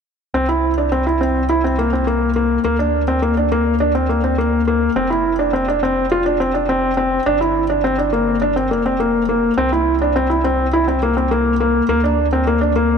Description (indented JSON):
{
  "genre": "piano and strings electronica",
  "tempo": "104 BPM",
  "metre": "4/4",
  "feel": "straight",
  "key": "unclear",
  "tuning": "A4 = 440 Hz",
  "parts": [
    { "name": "felt-muted upright piano", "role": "riff", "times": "0.3-13.0 s", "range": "Bb3 to F4", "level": "-16 LUFS", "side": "left 1 dB", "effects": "tape echo" },
    { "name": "warm sub bass", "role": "bass", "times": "0.3-13.0 s", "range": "F1 to D2", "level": "-22 LUFS", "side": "right 1 dB", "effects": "none" }
  ],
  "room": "moderate lush hall reverb, RT60 2.6 s",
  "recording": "none",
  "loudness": "-15 LUFS",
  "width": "side -6 dB against mid",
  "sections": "0.3-13.0 A section",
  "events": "none",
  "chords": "0.3 C7; 2.7 Bb/D; 5.0 F5; 7.3 Gm; 9.6 C7; 11.9 Bb/D"
}